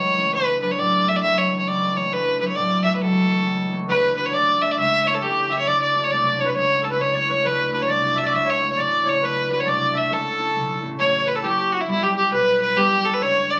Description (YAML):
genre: celtic folk, Celtic polka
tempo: 135 BPM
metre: 2/4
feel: swing 62% on 8ths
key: A mixolydian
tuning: A4 = 440 Hz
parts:
  - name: bright fiddle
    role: melody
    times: 0.0-13.6 s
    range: E4 to E5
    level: -22 LUFS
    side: equal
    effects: none
  - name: concert harp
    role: accompaniment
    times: 0.0-13.6 s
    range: C#2 to C#5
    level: -29 LUFS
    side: equal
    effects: none
  - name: accordion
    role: second line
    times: 3.9-13.6 s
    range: E4 to E5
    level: -26 LUFS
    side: equal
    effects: none
  - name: upright bass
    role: bass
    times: 3.9-13.6 s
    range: F#1 to E2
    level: -37 LUFS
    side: equal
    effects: none
room: wet small room reverb, RT60 0.5 s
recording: very old 78 rpm record, vinyl crackle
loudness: -20 LUFS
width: mono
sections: 0.0-3.9 A section; 3.9-11.0 A section; 11.0-13.6 B section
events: none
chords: 0.3 D; 1.2 A/C#; 2.1 D; 3.0 A/C#; 3.9 D; 4.8 A/C#; 5.7 D; 6.6 A/C#; 7.4 D; 8.3 A/C#; 9.2 D; 10.1 A/C#; 11.0 A; 11.9 Em/G; 12.8 G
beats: | 0.34 0.79 | 1.23 1.67 | 2.12 2.56 | 3.01 3.45 | 3.89 4.34 | 4.78 5.23 | 5.67 6.12 | 6.56 7.00 | 7.45 7.89 | 8.34 8.78 | 9.22 9.67 | 10.11 10.56 | 11.00 11.44 | 11.89 12.33 | 12.78 13.22